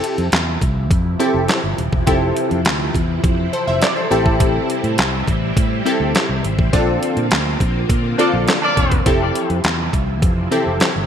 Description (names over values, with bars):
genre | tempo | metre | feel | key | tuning
early-eighties boogie funk | 103 BPM | 4/4 | straight | F major | A4 = 442 Hz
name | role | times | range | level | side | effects
funky polysynth comp | accompaniment | 0.0-10.9 s | C4 to E5 | -19 LUFS | left 1 dB | chorus
string machine, full ensemble | sustained chords | 0.0-11.1 s | C3 to F4 | -24 LUFS | equal | phaser, ensemble chorus
detuned 8-bit digital drum machine | drums | 0.0-10.9 s | handclaps, hi-hat, kick drum, snare drum | -18 LUFS | equal | gated reverb
fingered electric bass | bass | 0.2-11.1 s | Eb1 to Bb2 | -21 LUFS | equal | none
clear horn section | second line | 8.2-9.0 s | D4 to D5 | -22 LUFS | equal | ping-pong delay
room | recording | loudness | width
moderate plate reverb, RT60 1.9 s, digital ambience | bright 1980s-style digital production | -15 LUFS | side -8 dB against mid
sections
0.0-11.1 A section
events
band accent 6.7-9.1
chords
0.0 Fmaj7; 4.1 Am7; 6.7 Bbmaj7; 9.1 Fmaj7